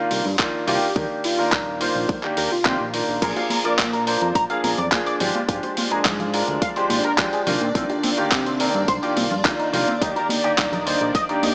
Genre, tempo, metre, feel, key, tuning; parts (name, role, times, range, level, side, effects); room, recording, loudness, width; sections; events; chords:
nu-disco, nu disco; 106 BPM; 4/4; straight; A4 = 440 Hz
unison lead; melody; 0.0-2.9 s; F4 to Bb4; -30 LUFS; equal; analog chorus, tape echo
bright grand piano; accompaniment; 0.0-11.5 s; Eb3 to D5; -26 LUFS; equal
fat analog bass; bass; 0.1-11.5 s; Eb1 to C3; -31 LUFS; equal; tube saturation
dusty soul sampler-style drum kit; drums; 0.1-11.5 s; crash cymbal, handclaps, hi-hat; -27 LUFS; equal; studio reverb
electronic kick drum; drums; 0.4-11.3 s; -28 LUFS; equal; studio reverb
string machine, full ensemble; sustained chords; 3.2-11.5 s; D4 to D5; -31 LUFS; equal; phaser, ensemble chorus, sidechain pumping
electric guitar with an envelope filter; riff; 3.2-11.5 s; C3 to Bb5; -28 LUFS; equal; ensemble chorus, tape echo
bongos and congas; percussion; 3.4-11.5 s; -32 LUFS; equal
light reverb, digital ambience; small speaker sound; -21 LUFS; mono
0.0-11.5 A section
0.0 Cm11; 1.0 Ebmaj7; 3.2 Bb7; 5.2 Fm69/Ab; 7.5 Cm11; 10.0 Ebmaj7